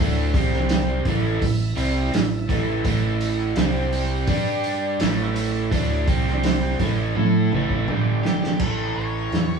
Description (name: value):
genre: blues rock power trio and southern rock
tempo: 84 BPM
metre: 4/4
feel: straight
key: unclear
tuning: A4 = 441 Hz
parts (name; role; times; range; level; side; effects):
- overdriven tonewheel organ; sustained chords; 0.0-8.6 s; C4 to G5; -33 LUFS; right 5 dB; slow rotary speaker, chorus vibrato
- crunchy overdriven guitar; riff; 0.0-9.6 s; G2 to A4; -24 LUFS; right 1 dB; none
- growling fingered electric bass; bass; 0.0-9.6 s; G1 to A2; -25 LUFS; right 2 dB; overdrive
- vintage drum kit; drums; 0.3-9.5 s; crash cymbal, hi-hat, kick drum, snare drum, toms; -23 LUFS; right 1 dB; none
- octave-fuzz lead guitar; melody; 8.2-9.6 s; G4 to C#5; -32 LUFS; left 1 dB; distortion
room: moderate studio reverb, RT60 0.6 s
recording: band playing live in one room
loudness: -19 LUFS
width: side -5 dB against mid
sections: 0.0-8.6 A section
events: drum fill 7.2-8.6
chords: 0.3 C5; 1.1 A5; 3.6 C5; 4.3 G5; 5.0 A; 6.1 C5; 6.8 A; 7.9 G5; 8.6 A